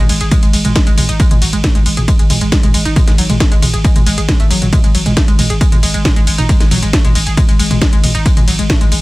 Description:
driving peak-time techno; 136 BPM; 4/4; straight; A4 = 440 Hz
analog pluck; riff; 0.0-9.0 s; F#3 to G#4; -20 LUFS; equal; chorus, sidechain pumping, tape echo
growling 808-style bass; bass; 0.0-9.0 s; G#1; -18 LUFS; equal; overdrive, sidechain pumping, low-pass filter
techno drum kit; drums; 0.1-9.0 s; hi-hat, ride cymbal, snare drum, toms; -16 LUFS; equal; sidechain pumping on hats, sidechain pumping on toms, sidechain pumping on cymbals
electronic kick drum; drums; 0.3-8.8 s; -11 LUFS; equal; overdrive
little or no reverb; -9 LUFS; side -20 dB against mid
0.0-9.0 A section
0.0 G#5

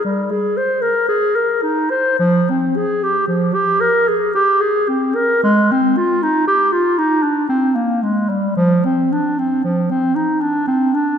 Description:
classical, baroque-style fantasia for unaccompanied clarinet; 57 BPM; 3/4; rubato; A4 = 440 Hz
mellow clarinet; solo; 0.0-11.2 s; F3 to C5; -14 LUFS; equal
wet scoring stage reverb, RT60 2.1 s; -14 LUFS; side -8 dB against mid
0.0-11.2 A section

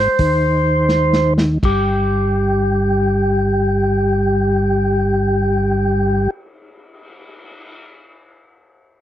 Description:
soul jazz organ trio; free time; A4 = 439 Hz
percussive tonewheel organ; melody; 0.0-6.3 s; G4 to C5; -17 LUFS; equal; slow rotary speaker
tonewheel organ; bass; 0.0-6.3 s; G1 to Eb2; -17 LUFS; equal; chorus vibrato, slow rotary speaker
vintage drum kit; drums; 0.2-7.7 s; crash cymbal, cymbal swell, hi-hat, kick drum, snare drum; -23 LUFS; equal
little or no reverb; dry, close 1970s-style studio recording; -14 LUFS; side -11 dB against mid
0.0-1.6 A section; 1.6-7.8 B section
slowing down 0.0-1.6; drum fill 0.9-1.6
0.0 Ab (rootless); 1.6 N.C.

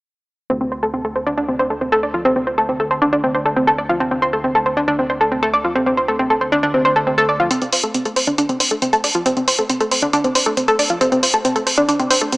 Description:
uplifting trance; 137 BPM; 4/4; straight; D minor; A4 = 440 Hz
analog pluck; arpeggios; 0.5-12.4 s; C4 to D5; -15 LUFS; equal; chorus, tape echo
fat analog bass; bass; 0.5-7.5 s; D2; -31 LUFS; equal
electronic hi-hat; drums; 7.5-12.4 s; -19 LUFS; equal; overdrive, high-pass filter on hats, low-pass filter on hats, high-pass filter on room, low-pass filter on room
moderate lush hall reverb, RT60 2.0 s; small speaker sound; -15 LUFS; side -23 dB against mid
0.5-7.5 A section; 7.5-12.4 B section
filter sweep on synth arpeggio sound 0.5-7.5; build-up 7.5-12.4
0.5 D7(no3)

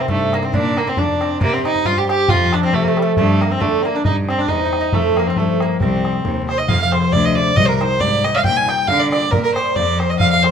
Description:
celtic folk, Celtic polka; 136 BPM; 2/4; swing 55% on 8ths; C dorian, F dorian from 6.7 s; A4 = 439 Hz
warm fiddle; melody; 0.0-10.5 s; G3 to Ab5; -19 LUFS; right 1 dB
mandolin; second line; 0.0-10.5 s; A3 to Ab5; -22 LUFS; right 5 dB
concert harp; accompaniment; 0.0-10.5 s; C3 to Eb5; -22 LUFS; left 6 dB
clear cello; bass; 0.1-10.4 s; C2 to D3; -22 LUFS; equal
bodhran; percussion; 0.1-10.5 s; -23 LUFS; equal
moderate studio reverb, RT60 0.9 s; minimal, uncompressed stereo recording; -14 LUFS; side -7 dB against mid
0.0-6.7 A section; 6.7-10.5 B section
0.0 Cmadd9; 0.5 Bb; 1.4 Cm; 2.3 F; 3.2 Gm; 4.1 Cm/G; 4.9 F; 5.8 Cm; 6.7 Fm; 7.6 Cm; 8.4 Gm7/Bb; 9.3 Bbadd9

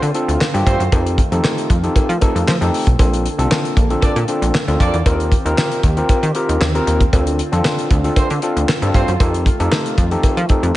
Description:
early-eighties boogie funk; 116 BPM; 4/4; straight; A4 = 441 Hz
overdriven tine electric piano; accompaniment; 0.0-10.8 s; C4 to Bb4; -20 LUFS; left 1 dB
chorused pulse-width pad; sustained chords; 0.0-10.8 s; D3 to A4; -27 LUFS; right 1 dB
plucky analog bass; bass; 0.0-10.7 s; Bb1 to F3; -18 LUFS; equal
damped 70s drum kit; drums; 0.0-10.7 s; handclaps, hi-hat, kick drum, snare drum; -17 LUFS; equal
cowbell; percussion; 0.4-10.4 s; -28 LUFS; equal
warm horn section; second line; 0.7-0.8, 4.0-5.0, 8.2-9.1 s; A3 to D5; -26 LUFS; right 3 dB
moderate scoring stage reverb, RT60 1.6 s, studio ambience; big arena sound, nothing above 10.5 kHz; -14 LUFS; side -16 dB against mid
0.0-10.8 A section
0.0 Dm7; 0.9 F7; 3.0 Bbmaj7; 5.1 Eb6; 7.1 Dm7; 9.2 F7

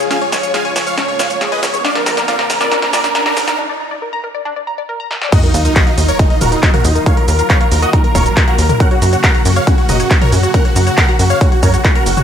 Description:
uplifting trance; 138 BPM; 4/4; straight; Eb minor; A4 = 442 Hz
big supersaw lead; melody; 0.0-12.2 s; D4 to Ab5; -17 LUFS; right 1 dB; phaser, sidechain pumping, tape echo
analog string pad; sustained chords; 0.0-12.2 s; Db3 to Gb4; -22 LUFS; left 1 dB; ensemble chorus, sidechain pumping
tight sequenced synth; arpeggios; 0.0-12.2 s; Db4 to Bb5; -23 LUFS; left 4 dB; chorus, phaser, cassette tape, sidechain pumping, tape echo
tight sequencer bass; bass; 0.0-12.2 s; Eb1 to Bb2; -15 LUFS; equal; sidechain pumping, high-pass filter
punchy analog drum machine; drums; 0.0-12.2 s; crash cymbal, handclaps, hi-hat, shaker, snare drum, toms; -18 LUFS; equal; high-pass filter on snare, high-pass filter on hats, high-pass filter on perc, high-pass filter on toms, high-pass filter on cymbals
riser and sub drop; sound effects; 1.1-7.1 s; -24 LUFS; right 1 dB
electronic kick drum; drums; 5.3-11.9 s; -12 LUFS; equal
light reverb, digital ambience; high-pass filter; -11 LUFS; side -8 dB against mid
0.0-5.3 A section; 5.3-12.2 B section
build-up 0.0-5.3; drum fill 0.0-3.6, 5.1; riser 1.1-3.6; break 3.6-5.3; drop 5.3-12.2; impact 5.3-7.1
0.0 Db; 1.8 Bb; 5.3 Ebmadd9; 8.8 Gb

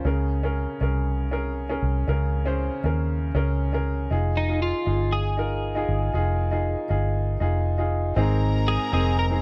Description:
piano-driven pop; 118 BPM; 4/4; straight; A4 = 440 Hz
clear upright piano; accompaniment; 0.0-9.4 s; Ab2 to C5; -30 LUFS; equal
vintage muted fingered electric bass; bass; 0.0-9.4 s; F1 to Eb2; -26 LUFS; equal
twelve-string electric guitar; melody; 4.4-9.3 s; Eb4 to Bb4; -31 LUFS; equal
rich chamber violin section; second line; 8.2-9.4 s; Bb4 to Bb5; -34 LUFS; equal
little or no reverb; dry, close 1970s-style studio recording; -24 LUFS; mono
0.0-8.2 A section; 8.2-9.4 B section
0.1 Bbm7; 4.1 Fm7; 8.2 Ab

